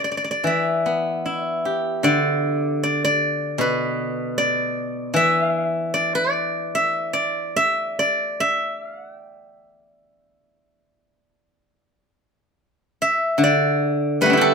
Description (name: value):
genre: chinese traditional, Chinese solo plucked strings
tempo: 66-78 BPM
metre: 4/4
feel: rubato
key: unclear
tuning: A4 = 439 Hz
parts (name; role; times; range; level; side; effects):
- steel-string zither; solo; 0.0-14.5 s; B2 to G5; -19 LUFS; equal; none
room: light reverb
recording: minimal, uncompressed stereo recording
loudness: -19 LUFS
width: side -5 dB against mid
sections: 0.0-11.8 A section; 11.8-14.5 B section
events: none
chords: none